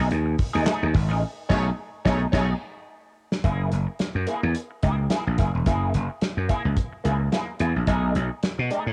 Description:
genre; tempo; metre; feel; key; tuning
funk; 108 BPM; 4/4; swing 56% on 16ths; F# mixolydian; A4 = 441 Hz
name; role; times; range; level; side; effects
semi-hollow electric guitar; accompaniment; 0.0-8.9 s; A3 to G#4; -32 LUFS; equal; wah
gritty slap bass; bass; 0.0-8.9 s; E1 to B2; -26 LUFS; equal; overdrive
warm soul drum kit; drums; 0.1-8.9 s; crash cymbal, handclaps, hi-hat, kick drum, snare drum; -28 LUFS; equal; none
warm horn section; second line; 1.5-2.5 s; A3 to C#5; -34 LUFS; equal; none
room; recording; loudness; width
studio reverb; home recording on cassette; -24 LUFS; mono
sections
0.0-3.4 A section; 3.4-8.9 B section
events
band accent 1.2-3.4; drum fill 2.3-3.4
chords
0.0 B13; 3.4 F#9; 7.9 B6

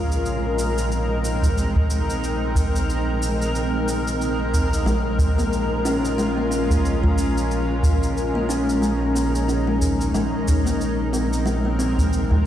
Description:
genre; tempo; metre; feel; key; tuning
organic downtempo; 91 BPM; 4/4; swing 58% on 16ths; unclear; A4 = 440 Hz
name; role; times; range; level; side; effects
granular cloud pad; sustained chords; 0.0-12.5 s; Ab3 to Bb4; -24 LUFS; equal; built-in reverb
round analog bass; bass; 0.0-12.5 s; Bb1; -24 LUFS; equal; none
shaker; drums; 0.1-12.3 s; none; -35 LUFS; equal; none
udu; percussion; 1.4-12.4 s; none; -21 LUFS; right 1 dB; none
kalimba; arpeggios; 4.9-12.4 s; Ab3 to Db4; -24 LUFS; left 2 dB; tape echo
room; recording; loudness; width
moderate lush hall reverb, RT60 1.9 s, small room ambience; played on a big sound system in a bare room, stone room reverb; -19 LUFS; side -11 dB against mid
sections
0.0-12.5 A section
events
none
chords
0.0 Abadd9/Bb; 4.9 Bbm7; 10.1 Abadd9/Bb

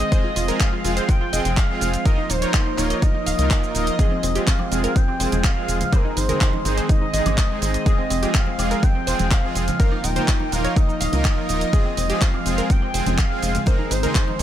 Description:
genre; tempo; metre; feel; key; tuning
progressive house; 124 BPM; 4/4; straight; F minor; A4 = 440 Hz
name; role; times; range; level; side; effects
expressive synth lead; melody; 0.0-14.4 s; Bb4 to G5; -26 LUFS; equal; analog chorus, sidechain pumping, tape echo
airy breathy pad; sustained chords; 0.0-14.4 s; Eb3 to Eb4; -29 LUFS; equal; chorus, vintage 12-bit sampler grit, sidechain pumping
wide unison pluck; arpeggios; 0.0-14.4 s; C4 to F5; -30 LUFS; equal; sidechain pumping, tape echo
tight sequencer bass; bass; 0.0-14.4 s; Eb1 to Db2; -24 LUFS; equal; tube saturation, sidechain pumping
house drum kit; drums; 0.0-14.4 s; handclaps, hi-hat, shaker; -27 LUFS; right 1 dB; none
soft supersaw; stabs; 0.1-14.4 s; Ab3 to Bb4; -28 LUFS; right 2 dB; sidechain pumping
electronic kick drum; drums; 0.1-14.2 s; none; -19 LUFS; equal; none
congas and woodblock; percussion; 4.0-14.4 s; none; -32 LUFS; right 4 dB; sidechain pumping on perc
room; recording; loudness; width
digital ambience; none; -18 LUFS; side -11 dB against mid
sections
0.0-14.4 A section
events
none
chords
0.1 Fm; 2.1 Ebsus2; 4.0 Fm; 5.9 Ab; 7.9 Fm; 9.8 Ebsus2; 11.7 Fm; 13.7 Ab

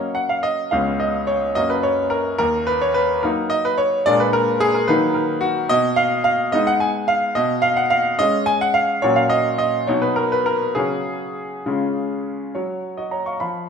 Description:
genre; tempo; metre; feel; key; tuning
classical-period piano sonatina; 72 BPM (dotted quarters); 6/8; rubato; F# major; A4 = 440 Hz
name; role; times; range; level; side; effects
clear grand piano; solo; 0.0-13.7 s; C#2 to C#6; -17 LUFS; equal; none
room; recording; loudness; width
moderate recital hall reverb, RT60 1.6 s; minimal, uncompressed stereo recording; -17 LUFS; side -6 dB against mid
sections
0.0-12.6 A section; 12.6-13.7 B section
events
none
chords
0.0 F#; 0.7 C#5; 1.6 F#; 2.4 D#m; 4.1 A#7; 4.9 D#m; 5.7 G#m/B; 7.4 C#5/B; 9.0 F#/A#; 9.9 B; 10.8 C#sus4; 11.7 C#; 12.6 F#5

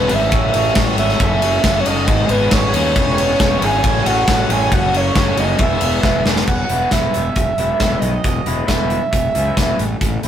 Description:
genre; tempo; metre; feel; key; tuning
indie rock; 136 BPM; 4/4; straight; E major; A4 = 440 Hz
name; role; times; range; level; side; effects
overdriven synth lead; melody; 0.0-9.7 s; B4 to G#5; -20 LUFS; right 3 dB; distortion
bell-like tine electric piano; second line; 0.0-6.2 s; B3 to G#4; -31 LUFS; left 3 dB; none
chorused pulse-width pad; sustained chords; 0.0-6.5 s; G#4 to D#6; -33 LUFS; left 1 dB; none
electric guitar through a small old amp; riff; 0.0-10.3 s; A2 to C#5; -26 LUFS; right 2 dB; none
raw garage guitar; riff; 0.0-10.3 s; E2 to A4; -25 LUFS; left 4 dB; overdrive
fuzz fingered electric bass; bass; 0.0-10.3 s; E1 to D#2; -20 LUFS; equal; overdrive
big rock drum kit; drums; 0.1-10.3 s; crash cymbal, hi-hat, kick drum, ride cymbal, snare drum; -18 LUFS; left 1 dB; none
room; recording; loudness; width
light reverb; rough rehearsal-room recording, warm saturation; -14 LUFS; side -10 dB against mid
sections
0.0-6.5 A section; 6.5-10.3 B section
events
drum fill 6.0-6.5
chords
0.3 A6; 1.2 F#m; 2.1 G#m; 3.0 E6; 3.8 A6; 4.7 F#m; 5.6 E; 6.5 Eadd9

